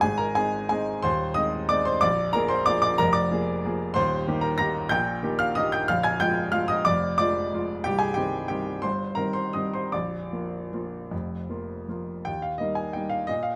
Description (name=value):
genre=classical, piano waltz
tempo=145-200 BPM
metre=3/4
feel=rubato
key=Eb major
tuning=A4 = 440 Hz
part: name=clear grand piano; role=solo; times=0.0-13.6 s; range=Bb0 to Bb6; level=-26 LUFS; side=equal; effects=none
room=light reverb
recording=none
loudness=-26 LUFS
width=mono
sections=0.0-12.3 A section; 12.3-13.6 B section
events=none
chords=0.0 Ab; 2.0 Bb7; 4.0 Eb; 5.9 Bb7; 7.9 Cm; 9.9 Bb; 12.3 Eb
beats=| 0.02 0.36 0.70 | 1.03 1.36 1.70 | 2.02 2.34 2.67 | 3.00 3.31 3.64 | 3.96 4.27 4.59 | 4.91 5.24 5.57 | 5.89 6.21 6.54 | 6.87 7.20 7.54 | 7.86 8.17 8.51 | 8.84 9.17 9.55 | 9.93 10.32 10.73 | 11.12 11.50 11.89 | 12.28 12.61 12.96 | 13.29